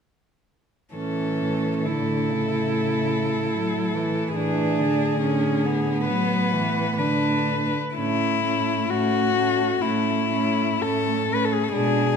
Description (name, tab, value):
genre	classical, lyrical piece for cello ensemble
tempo	58-74 BPM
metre	4/4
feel	rubato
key	A major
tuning	A4 = 440 Hz
part	warm cello	melody	0.9-12.2 s	E4 to B4	-25 LUFS	left 7 dB	none
part	dark cello	second line	0.9-12.2 s	B3 to E4	-27 LUFS	right 6 dB	none
part	dark cello	accompaniment	0.9-12.2 s	C#3 to A3	-27 LUFS	left 2 dB	none
part	dark cello	bass	0.9-12.2 s	A2 to B2	-28 LUFS	right 4 dB	none
room	moderate scoring stage reverb, RT60 1.9 s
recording	none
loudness	-21 LUFS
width	side -6 dB against mid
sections	0.9-8.0 A section; 8.0-12.2 B section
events	none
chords	0.9 A; 4.4 E7/A; 8.0 A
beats	| 0.94 1.86 2.69 3.52 | 4.37 5.22 6.07 6.98 | 7.96 8.90 9.83 10.82 | 11.73